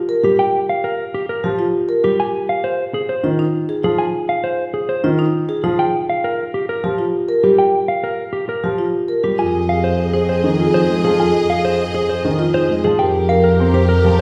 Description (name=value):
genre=classical, minimalist pattern music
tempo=100 BPM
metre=3/4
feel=straight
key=F minor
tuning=A4 = 440 Hz
part: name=marimba with medium mallets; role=arpeggios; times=0.1-13.9 s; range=Eb4 to C5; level=-22 LUFS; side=equal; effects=none
part: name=mellow electric guitar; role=melody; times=0.2-14.1 s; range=G4 to Ab5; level=-22 LUFS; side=equal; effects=none
part: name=warm concert grand piano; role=accompaniment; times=0.2-14.2 s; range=Eb3 to C4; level=-25 LUFS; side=equal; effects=none
part: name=mellow French horn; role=second line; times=9.4-14.2 s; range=Ab4 to Bb4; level=-25 LUFS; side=equal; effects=none
part: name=clear symphonic string section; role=sustained chords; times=9.4-14.2 s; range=G4 to Eb5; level=-28 LUFS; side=equal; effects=none
part: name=rich symphonic double bass section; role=bass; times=9.4-14.2 s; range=F2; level=-21 LUFS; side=equal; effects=none
room=wet recital hall reverb, RT60 1.7 s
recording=heard from further back in the room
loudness=-17 LUFS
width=mono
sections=0.0-9.4 A section; 9.4-14.2 A section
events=none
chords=0.0 Gm7; 2.2 Fm7; 5.8 Gm7/F; 9.4 Fm7; 13.0 Gm7/F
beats=| 0.39 0.99 1.59 | 2.19 2.79 3.39 | 3.99 4.59 5.19 | 5.79 6.39 6.99 | 7.59 8.19 8.79 | 9.39 9.99 10.59 | 11.19 11.79 12.39 | 12.99 13.59 14.19